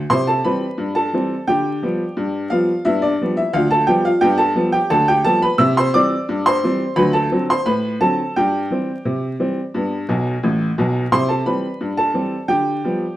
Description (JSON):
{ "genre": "ragtime piano", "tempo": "87 BPM", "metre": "2/4", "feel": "straight", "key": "C major", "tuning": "A4 = 440 Hz", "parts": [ { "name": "clear upright piano", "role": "solo", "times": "0.1-13.2 s", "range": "A1 to E6", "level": "-16 LUFS", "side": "equal", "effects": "none" } ], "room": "wet studio reverb, RT60 0.8 s", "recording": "heard from further back in the room, vinyl crackle", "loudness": "-16 LUFS", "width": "side -14 dB against mid", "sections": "0.1-13.2 A section", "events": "upright piano fill 10.1-11.1", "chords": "0.1 C; 1.5 G7/D; 2.9 G7; 5.6 C; 7.0 D7; 8.3 C/G; 9.7 G; 11.1 C; 12.5 G7/D" }